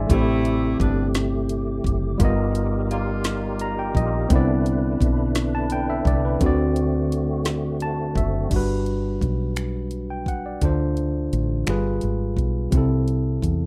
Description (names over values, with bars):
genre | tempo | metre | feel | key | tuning
slow six-eight R&B | 57 BPM (dotted quarters) | 6/8 | straight | G major | A4 = 440 Hz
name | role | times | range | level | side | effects
overdriven tine electric piano | accompaniment | 0.0-13.7 s | C3 to C6 | -27 LUFS | equal | none
tonewheel organ | sustained chords | 0.0-8.5 s | C3 to B4 | -31 LUFS | equal | overdrive, chorus vibrato, slow rotary speaker
woody fretless electric bass | bass | 0.0-13.7 s | F#1 to E2 | -26 LUFS | equal | none
mellow horn section | stabs | 0.1-3.9 s | B2 to F4 | -34 LUFS | equal | slapback echo
smooth R&B drum kit | drums | 0.1-13.6 s | crash cymbal, finger snaps, hi-hat, kick drum, snare drum | -27 LUFS | equal | none
room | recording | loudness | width
digital ambience | rough home demo mix | -23 LUFS | mono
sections
0.0-8.5 A section; 8.5-13.7 B section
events
tine electric piano fill 3.2-4.3, 7.5-8.5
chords
0.1 Am7; 2.2 G7alt; 4.3 Cmaj9; 6.4 D7; 8.5 Gmaj7; 10.6 Dm7; 11.7 G7b9; 12.7 C6